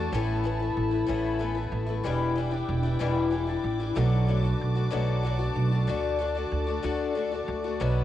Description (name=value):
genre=folk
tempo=62 BPM (dotted quarters)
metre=6/8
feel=straight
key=unclear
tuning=A4 = 442 Hz
part: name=picked twelve-string acoustic guitar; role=accompaniment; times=0.0-8.0 s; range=E2 to F#4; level=-28 LUFS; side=left 6 dB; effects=cassette tape
part: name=warm chamber string section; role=sustained chords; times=0.0-8.0 s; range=E4 to D6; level=-37 LUFS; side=right 2 dB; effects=cassette tape
part: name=upright bass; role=bass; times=0.0-8.0 s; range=E1 to D2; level=-27 LUFS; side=right 2 dB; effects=none
room=light reverb, small room ambience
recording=home recording on cassette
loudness=-25 LUFS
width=side -12 dB against mid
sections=0.0-8.0 A section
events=none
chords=0.1 Asus2; 2.0 Em7; 4.0 Bm7; 5.9 D